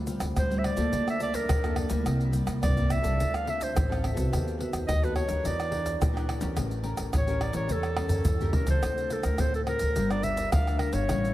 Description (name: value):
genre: samba and choro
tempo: 106 BPM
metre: 4/4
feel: straight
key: D minor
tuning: A4 = 441 Hz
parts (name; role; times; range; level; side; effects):
- nylon-string guitar; accompaniment; 0.0-11.3 s; G2 to Bb4; -33 LUFS; left 2 dB; lush chorus
- upright bass; bass; 0.0-11.3 s; G1 to Bb2; -30 LUFS; equal; none
- tube shaker, pandeiro, surdo and tamborim; percussion; 0.1-11.3 s; none; -29 LUFS; equal; none
- clear clarinet; melody; 0.4-11.3 s; A4 to F5; -31 LUFS; right 1 dB; tape echo
room: moderate plate reverb, RT60 3.5 s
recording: dreamy mix soaked in reverb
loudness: -25 LUFS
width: side -15 dB against mid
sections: 0.0-11.3 A section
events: drum fill 8.0-8.8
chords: 0.0 Dm7; 0.9 Bbmaj7/D; 2.1 C7; 3.2 Dm7; 4.3 B7/D#; 5.4 Em7b5; 6.6 A7b9; 8.8 Dm7; 10.0 Gm7